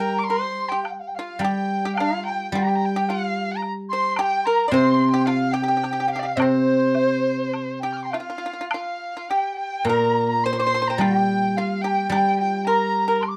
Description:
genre	chinese traditional, Chinese chamber ensemble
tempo	107 BPM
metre	4/4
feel	rubato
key	unclear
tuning	A4 = 440 Hz
part	mellow large dizi	melody	0.0-13.4 s	C5 to D6	-28 LUFS	equal	none
part	clear erhu	second line	0.0-13.2 s	C5 to G6	-30 LUFS	equal	none
part	pipa	second line	0.0-13.2 s	C4 to D5	-28 LUFS	equal	none
part	guzheng	accompaniment	0.0-13.4 s	Bb2 to G3	-26 LUFS	equal	none
part	woodblock	percussion	0.8-13.4 s	none	-32 LUFS	equal	none
room	moderate small room ambience, RT60 0.5 s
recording	dark, warm production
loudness	-22 LUFS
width	mono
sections	0.0-8.7 A section; 8.7-13.4 B section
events	none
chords	none

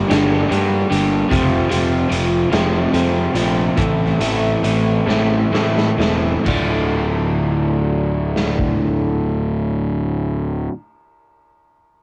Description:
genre	quiet-loud alternative rock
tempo	42-50 BPM (dotted quarters)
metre	6/8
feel	straight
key	D minor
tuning	A4 = 439 Hz
part	electric guitar through a small old amp	arpeggios	0.0-10.7 s	D2 to A4	-24 LUFS	equal	cassette tape
part	crunchy overdriven guitar	riff	0.0-10.7 s	D2 to A3	-23 LUFS	equal	cassette tape
part	fuzz picked electric bass	bass	0.0-10.7 s	D1 to A2	-23 LUFS	equal	overdrive
part	raw garage drum kit	drums	0.1-8.8 s	hi-hat, kick drum, ride cymbal, snare drum	-26 LUFS	equal	cassette tape
room	little or no reverb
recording	home recording on cassette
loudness	-18 LUFS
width	mono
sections	0.0-6.5 A section; 6.5-9.3 B section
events	slowing down 1.3-6.5; drum fill 5.1-6.5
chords	0.0 Gm; 1.3 F; 3.8 Am; 6.5 Dm

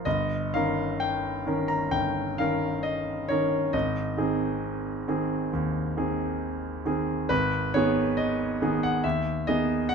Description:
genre	classical, romantic character piece for solo piano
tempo	63-71 BPM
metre	4/4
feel	rubato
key	Ab major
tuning	A4 = 440 Hz
part	clear concert grand piano	solo	0.0-9.9 s	G1 to Bb5	-25 LUFS	equal	none
room	moderate recital hall reverb, RT60 1.5 s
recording	close, detailed microphones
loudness	-25 LUFS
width	side -6 dB against mid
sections	0.0-9.9 A section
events	none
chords	0.1 Eb7/G; 3.7 Ab; 7.3 G#m

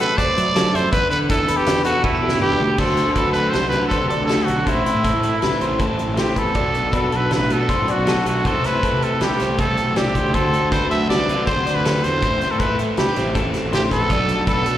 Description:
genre	math rock and midwest emo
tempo	159 BPM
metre	5/4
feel	straight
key	unclear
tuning	A4 = 440 Hz
part	growling trumpet	melody	0.0-14.8 s	E4 to E5	-21 LUFS	right 2 dB	slapback echo
part	twelve-string electric guitar	accompaniment	0.0-14.8 s	E2 to G4	-26 LUFS	right 4 dB	lush chorus, slapback echo
part	electric guitar through a small old amp	arpeggios	0.0-14.8 s	G4 to E5	-25 LUFS	left 5 dB	slapback echo
part	loose indie drum kit	drums	0.0-14.8 s	crash cymbal, hi-hat, kick drum, snare drum, toms	-24 LUFS	equal	none
part	fuzz picked electric bass	bass	0.4-14.8 s	A1 to F#3	-24 LUFS	equal	overdrive
part	overdriven electric guitar	riff	2.8-14.8 s	A2 to F#4	-26 LUFS	equal	slapback echo
room	light reverb, small room ambience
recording	live gig heard through the venue's PA, recital hall reverb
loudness	-16 LUFS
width	side -12 dB against mid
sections	0.0-2.8 A section; 2.8-14.8 B section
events	drum fill 2.0-2.8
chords	0.0 F#m7b5; 0.9 Em7; 2.8 D7; 4.7 Am; 6.6 Bm7; 8.5 Am7/C; 10.3 D7; 12.2 Am7; 14.1 Bm7

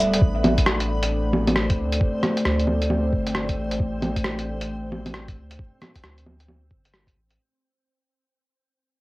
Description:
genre	future garage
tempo	134 BPM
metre	4/4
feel	swing 63% on 16ths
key	A minor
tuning	A4 = 440 Hz
part	dark analog pad	sustained chords	0.0-7.4 s	G3 to G5	-26 LUFS	left 1 dB	chorus, sidechain pumping
part	soft dub sub bass	bass	0.0-7.4 s	D1 to D2	-27 LUFS	equal	sidechain pumping
part	backwards swelling texture	texture	0.0-7.4 s	B3 to B5	-36 LUFS	equal	built-in reverb
part	lo-fi sampler-style drum kit	drums	0.1-7.4 s	bongos, hi-hat, rim click	-24 LUFS	equal	cassette tape
part	electronic kick drum	drums	0.2-7.1 s	none	-22 LUFS	equal	cassette tape
room	light reverb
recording	home recording on cassette, vinyl crackle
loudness	-20 LUFS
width	side -20 dB against mid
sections	0.2-7.4 A section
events	fade-out 0.2-7.4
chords	0.2 Am7

